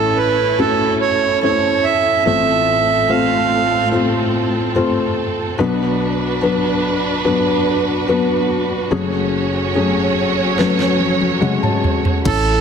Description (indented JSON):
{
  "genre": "pop ballad",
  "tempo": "72 BPM",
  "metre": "4/4",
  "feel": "straight",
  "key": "unclear",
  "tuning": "A4 = 439 Hz",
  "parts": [
    { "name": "accordion", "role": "melody", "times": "0.0-3.9, 12.3-12.6 s", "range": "A4 to F5", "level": "-16 LUFS", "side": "right 6 dB", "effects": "none" },
    { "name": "felt-muted upright piano", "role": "accompaniment", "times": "0.0-12.6 s", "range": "F#1 to A5", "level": "-18 LUFS", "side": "left 3 dB", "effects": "none" },
    { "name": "warm studio string section", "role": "sustained chords", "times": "0.0-12.6 s", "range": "A2 to C#5", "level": "-21 LUFS", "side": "right 3 dB", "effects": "none" },
    { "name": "smooth R&B drum kit", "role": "drums", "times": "10.6-12.4 s", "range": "crash cymbal, hi-hat, kick drum, snare drum, toms", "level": "-20 LUFS", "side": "right 1 dB", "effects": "none" },
    { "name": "saturated sub bass", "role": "bass", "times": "12.3-12.6 s", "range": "A1", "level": "-19 LUFS", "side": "right 1 dB", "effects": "none" }
  ],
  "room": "wet concert hall reverb, RT60 2.0 s, small room ambience",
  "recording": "dense, heavily limited modern master",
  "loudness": "-14 LUFS",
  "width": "side -7 dB against mid",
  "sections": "0.0-12.3 A section",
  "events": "drum fill 10.6-12.3; felt piano fill 11.0-12.3",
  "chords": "0.0 A; 2.3 F/A; 5.6 Bm; 8.9 F#madd9"
}